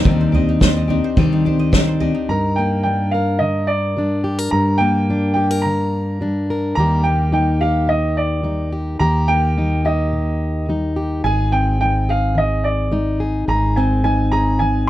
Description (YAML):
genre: indie folk with a building arrangement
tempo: 107 BPM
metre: 4/4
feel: straight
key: G phrygian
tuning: A4 = 440 Hz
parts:
  - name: picked steel-string acoustic guitar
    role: accompaniment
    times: 0.0-2.3 s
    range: Eb3 to G4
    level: -21 LUFS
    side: left 8 dB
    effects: none
  - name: qanun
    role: arpeggios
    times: 0.0-3.6 s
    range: Eb3 to Eb5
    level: -28 LUFS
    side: right 4 dB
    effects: none
  - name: fingered electric bass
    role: bass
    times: 0.1-14.9 s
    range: Ab1 to Eb3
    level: -19 LUFS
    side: equal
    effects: none
  - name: soft-mallet drum kit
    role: drums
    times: 0.1-2.1 s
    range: kick drum, snare drum, toms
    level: -18 LUFS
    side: equal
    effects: none
  - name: clear upright piano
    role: melody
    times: 2.3-14.9 s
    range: D5 to Bb5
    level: -20 LUFS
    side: right 1 dB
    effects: none
  - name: fingerpicked plugged-in steel-string acoustic guitar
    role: accompaniment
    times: 2.3-14.9 s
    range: G2 to Bb4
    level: -22 LUFS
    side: left 2 dB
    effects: none
room: little or no reverb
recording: none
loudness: -15 LUFS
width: side -14 dB against mid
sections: 0.1-2.3 A section; 2.3-14.9 B section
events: none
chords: 0.1 Cmadd9/Eb; 2.3 Gm; 6.8 Eb; 11.2 Ab